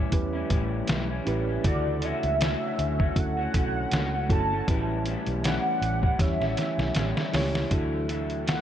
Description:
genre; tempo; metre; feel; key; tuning
indie pop, bedroom pop; 79 BPM; 4/4; swing 55% on 16ths; D major; A4 = 441 Hz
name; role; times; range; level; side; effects
electric guitar through a small old amp; accompaniment; 0.0-8.6 s; A2 to F#4; -33 LUFS; left 2 dB; analog chorus, warbly pitch drift
mellow reed electric piano; accompaniment; 0.0-8.6 s; C#3 to C#5; -33 LUFS; right 3 dB; fast tremolo, cassette tape
warbly tape-like pad; sustained chords; 0.0-8.6 s; E3 to A4; -38 LUFS; left 2 dB; chorus, built-in reverb
vintage muted fingered electric bass; bass; 0.0-8.6 s; G1 to E2; -30 LUFS; equal; none
lo-fi sampler-style drum kit; drums; 0.1-8.6 s; hi-hat, kick drum, snare drum; -27 LUFS; equal; none
warm velvety synth lead; melody; 1.7-8.6 s; D5 to A5; -30 LUFS; right 1 dB; ensemble chorus, tape echo
room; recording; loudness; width
digital ambience; none; -24 LUFS; side -10 dB against mid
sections
0.0-7.7 A section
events
drum fill 6.2-7.7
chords
0.0 A7; 1.6 Dmaj7; 4.7 A7; 7.7 Dadd9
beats
0.12 0.88 | 1.64 2.40 3.16 3.92 | 4.68 5.44 6.20 6.96 | 7.72 8.47

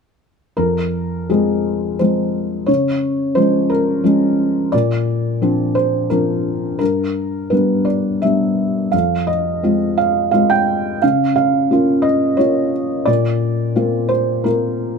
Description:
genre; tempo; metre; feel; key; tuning
neoclassical minimalist piano; 87 BPM; 3/4; rubato; F minor; A4 = 437 Hz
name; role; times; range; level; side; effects
felt-muted upright piano; solo; 0.6-15.0 s; F2 to G5; -15 LUFS; equal; none
room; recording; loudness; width
light reverb; none; -15 LUFS; side -5 dB against mid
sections
0.6-15.0 A section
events
none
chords
0.6 Fm; 2.7 Db6; 4.7 Bbadd9; 6.8 G; 8.9 Fm; 11.0 Db6; 13.1 Bbadd9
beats
| 0.59 1.30 2.00 | 2.68 3.37 4.05 | 4.72 5.41 6.09 | 6.80 7.52 8.22 | 8.93 9.63 10.33 | 11.02 11.71 12.39 | 13.08 13.76 14.46

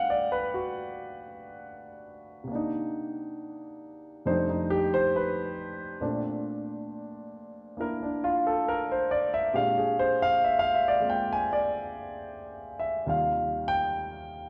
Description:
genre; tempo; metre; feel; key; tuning
solo jazz; 68 BPM; 4/4; swing 67% on 8ths; unclear; A4 = 441 Hz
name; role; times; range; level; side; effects
dark concert grand piano; solo; 0.0-14.5 s; Eb2 to Ab5; -29 LUFS; equal; none
room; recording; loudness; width
wet large studio reverb, RT60 1.3 s; band playing live in one room, nothing above 10.9 kHz; -28 LUFS; mono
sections
0.0-14.5 A section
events
grand piano solo 0.0-14.5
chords
0.0 Gmaj9; 2.5 Cm9; 4.3 F13; 6.0 Bbmaj9; 9.5 Bb13; 13.1 Eb69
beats
0.73 1.61 | 2.50 3.38 4.26 5.14 | 6.02 6.90 7.78 8.66 | 9.55 10.43 11.31 12.19 | 13.07 13.95

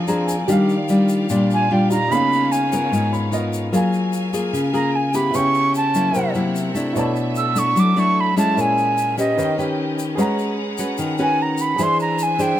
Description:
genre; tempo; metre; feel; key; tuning
bossa nova; 149 BPM; 4/4; straight; unclear; A4 = 440 Hz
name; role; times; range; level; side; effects
clear concert grand piano; accompaniment; 0.0-12.6 s; Bb3 to B#5; -28 LUFS; right 2 dB; none
nylon-string guitar; accompaniment; 0.0-12.6 s; Ab2 to C5; -19 LUFS; left 2 dB; none
bright studio string section; sustained chords; 0.0-12.6 s; C4 to A#5; -31 LUFS; left 1 dB; none
egg shaker; percussion; 0.1-12.6 s; none; -34 LUFS; left 6 dB; none
reedy concert flute; melody; 1.5-12.6 s; D#5 to E6; -20 LUFS; right 2 dB; none
room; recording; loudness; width
little or no reverb; none; -17 LUFS; side -12 dB against mid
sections
0.0-3.7 A section; 3.7-12.6 A section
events
grand piano fill 0.0-0.5, 2.9-3.7; flute solo 0.0-12.6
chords
0.5 Ebmaj9; 2.1 Db13; 3.7 F#maj9; 5.3 C#m7b5; 6.1 C7#11; 7.0 Bm11; 8.6 A#m7b5; 9.4 D#7b13; 10.2 G#m11; 11.8 Eaug7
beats
0.09 | 0.49 0.90 1.30 1.70 | 2.11 2.51 2.92 3.32 | 3.72 4.13 4.53 4.94 | 5.34 5.74 6.15 6.55 | 6.96 7.36 7.76 8.17 | 8.57 8.97 9.38 9.78 | 10.18 10.59 10.99 11.39 | 11.79 12.20 12.60

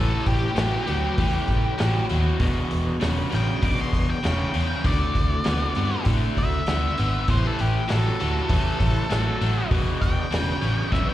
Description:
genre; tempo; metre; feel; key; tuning
blues rock power trio and southern rock; 98 BPM; 4/4; straight; A mixolydian; A4 = 440 Hz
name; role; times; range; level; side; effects
octave-fuzz lead guitar; melody; 0.0-11.1 s; G4 to D6; -29 LUFS; equal; distortion, slapback echo
tonewheel organ; sustained chords; 0.0-11.1 s; F#3 to D5; -37 LUFS; right 4 dB; chorus vibrato, slow rotary speaker
overdriven electric guitar; riff; 0.0-11.1 s; E2 to B3; -26 LUFS; left 1 dB; spring reverb
vintage muted picked electric bass; bass; 0.0-11.1 s; E1 to A2; -24 LUFS; equal; none
vintage drum kit; drums; 0.3-11.1 s; hi-hat, kick drum, snare drum; -26 LUFS; equal; none
room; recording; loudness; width
little or no reverb; live gig heard through the venue's PA, recital hall reverb; -20 LUFS; side -14 dB against mid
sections
0.0-11.1 A section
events
lead electric guitar solo 0.0-11.1; drum fill 10.9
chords
0.0 A7; 2.4 E7; 4.8 D7; 7.3 A7; 9.7 E7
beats
0.57 1.18 1.79 | 2.41 3.02 3.63 4.24 | 4.85 5.46 6.07 6.67 | 7.28 7.89 8.50 9.11 | 9.71 10.32 10.93

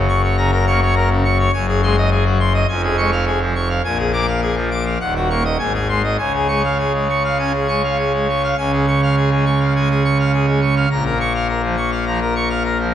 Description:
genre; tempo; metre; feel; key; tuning
classical, organ toccata; 103 BPM; 4/4; straight; Db major; A4 = 440 Hz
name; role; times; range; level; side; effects
pipe organ, full organ; solo; 0.0-12.9 s; Eb1 to D6; -15 LUFS; equal; none
room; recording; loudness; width
wet scoring stage reverb, RT60 1.6 s; none; -15 LUFS; side -10 dB against mid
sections
0.0-8.6 A section; 8.6-12.9 A section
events
none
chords
0.0 Gb; 1.5 Ab7/Gb; 2.7 Db/F; 3.8 Bb7; 5.0 Ebm7; 5.6 Ab; 6.2 Db; 10.9 Bbm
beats
0.38 0.96 | 1.53 2.11 2.69 3.26 | 3.84 4.42 5.01 5.59 | 6.19 6.79 7.39 7.99 | 8.59 9.17 9.76 10.33 | 10.91 11.49 12.06 12.65

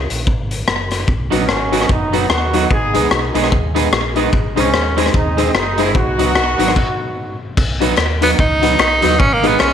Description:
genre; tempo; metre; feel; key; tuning
ska; 148 BPM; 4/4; swing 59% on 8ths; B major; A4 = 440 Hz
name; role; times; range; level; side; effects
warm horn section; melody; 0.0-7.4 s; F#3 to G#4; -20 LUFS; right 1 dB; slapback echo
fingered electric bass; bass; 0.0-9.7 s; F#1 to D#2; -22 LUFS; right 1 dB; none
raw garage drum kit; drums; 0.1-9.7 s; crash cymbal, hi-hat, kick drum, rim click; -18 LUFS; left 2 dB; slapback echo
electric guitar at the edge of break-up; accompaniment; 1.3-9.6 s; F#3 to G#4; -20 LUFS; right 11 dB; spring reverb
honky-tonk upright piano; stabs; 1.3-9.6 s; D#4 to B#4; -21 LUFS; left 10 dB; slapback echo
group handclap; percussion; 8.0-9.7 s; none; -32 LUFS; left 10 dB; none
edgy tenor saxophone; melody; 8.2-9.7 s; A#3 to D#4; -14 LUFS; right 1 dB; slapback echo
room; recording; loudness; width
moderate echo chamber reverb, RT60 1.4 s, small room ambience; 1960s-style stereo with parts hard left and right; -13 LUFS; side -8 dB against mid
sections
0.0-7.6 A section; 7.6-9.7 B section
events
stop 6.8-7.6; tenor saxophone solo 7.6-9.7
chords
0.0 C#m; 1.1 B; 2.7 G#m; 4.3 G#; 6.0 B; 9.2 G#m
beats
0.27 0.68 | 1.08 1.49 1.90 2.30 | 2.71 3.11 3.52 3.92 | 4.33 4.74 5.14 5.55 | 5.95 6.36 6.76 7.17 | 7.58 7.98 8.38 8.79 | 9.20 9.60

